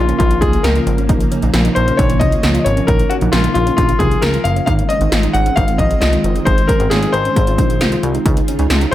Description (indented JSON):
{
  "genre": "synth-pop",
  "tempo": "134 BPM",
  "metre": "4/4",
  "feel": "straight",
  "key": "Bb minor",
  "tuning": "A4 = 440 Hz",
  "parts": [
    { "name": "bright concert grand piano", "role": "melody", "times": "0.0-8.9 s", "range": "F4 to Gb5", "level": "-18 LUFS", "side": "left 3 dB", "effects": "analog delay" },
    { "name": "soft string machine", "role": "sustained chords", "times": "0.0-8.9 s", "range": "Db3 to Ab4", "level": "-21 LUFS", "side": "equal", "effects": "ensemble chorus" },
    { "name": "soft round pluck", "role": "arpeggios", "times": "0.0-8.9 s", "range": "Db4 to F4", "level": "-24 LUFS", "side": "right 2 dB", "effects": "chorus, analog delay" },
    { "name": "chorused synth bass", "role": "bass", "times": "0.0-8.9 s", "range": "Gb1 to Db2", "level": "-17 LUFS", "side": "equal", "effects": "none" },
    { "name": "80s electronic pad drums", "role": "drums", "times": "0.1-8.9 s", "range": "hi-hat, kick drum, snare drum", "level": "-17 LUFS", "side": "equal", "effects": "none" }
  ],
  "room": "light reverb",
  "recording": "echo-heavy mix",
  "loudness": "-12 LUFS",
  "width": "side -13 dB against mid",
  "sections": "0.0-8.9 A section",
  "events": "none",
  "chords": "0.0 Bbm; 8.3 Db"
}